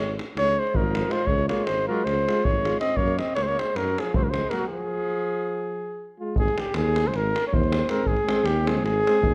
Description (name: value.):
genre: balkan folk, Balkan brass band.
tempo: 318 BPM (eighths).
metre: 9/8.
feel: straight.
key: Db major.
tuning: A4 = 445 Hz.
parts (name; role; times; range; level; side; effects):
warm flugelhorn; melody; 0.0-9.3 s; G4 to Eb5; -27 LUFS; equal; none.
clear alto saxophone; second line; 0.0-6.2 s; F3 to C4; -35 LUFS; equal; none.
mellow tuba; bass; 0.0-9.3 s; Ab1 to Gb2; -30 LUFS; equal; none.
davul; percussion; 0.1-9.3 s; none; -31 LUFS; equal; none.
brilliant trombone; accompaniment; 1.1-9.2 s; C4 to Gb4; -36 LUFS; equal; none.
warm euphonium; accompaniment; 1.1-9.2 s; Ab3 to Bb3; -34 LUFS; equal; none.
room: moderate recital hall reverb, RT60 1.5 s.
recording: none.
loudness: -24 LUFS.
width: mono.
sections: 0.0-6.4 A section; 6.4-9.3 B section.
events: break 4.7-6.4.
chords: 0.0 Db; 3.0 Gb; 4.7 Fm; 6.4 Ab.